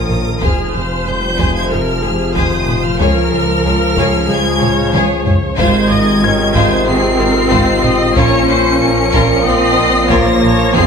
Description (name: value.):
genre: cinematic, hybrid orchestral and electronic film score.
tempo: 93 BPM.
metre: 4/4.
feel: straight.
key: Bb minor.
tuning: A4 = 436 Hz.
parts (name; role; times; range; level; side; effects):
rich chamber violin section; melody; 0.0-10.9 s; Eb6 to Db7; -21 LUFS; left 2 dB; none.
rich symphonic violin section; second line; 0.0-10.9 s; F4 to Db5; -20 LUFS; left 3 dB; none.
rich symphonic viola section; accompaniment; 0.0-10.9 s; Db4 to Eb5; -19 LUFS; equal; none.
mellow French horn section; sustained chords; 0.0-10.9 s; F3 to F4; -20 LUFS; left 8 dB; none.
mellow trombone section; sustained chords; 0.0-10.9 s; Bb2 to F3; -21 LUFS; right 3 dB; none.
rich symphonic cello section; bass; 0.0-10.9 s; Eb3 to Db4; -18 LUFS; right 2 dB; none.
swelling detuned saw bass; bass; 0.0-10.9 s; F1 to Db2; -21 LUFS; equal; none.
rich symphonic double bass section; bass; 0.1-10.8 s; Ab1 to F2; -20 LUFS; right 3 dB; none.
taiko ensemble; drums; 0.1-10.9 s; none; -19 LUFS; equal; none.
warm concert grand piano; texture; 6.2-10.9 s; C5 to Ab6; -25 LUFS; left 5 dB; none.
room: moderate scoring stage reverb, RT60 1.6 s.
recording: none.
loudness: -11 LUFS.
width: side -6 dB against mid.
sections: 0.0-10.9 A section.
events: drum fill 4.6-5.6.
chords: 0.4 Fm; 3.0 Db; 5.6 Ab6; 8.2 Bbm.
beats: | 0.42 1.07 1.72 2.36 | 3.01 3.65 4.30 4.94 | 5.59 6.23 6.88 7.52 | 8.17 8.81 9.46 10.10 | 10.75.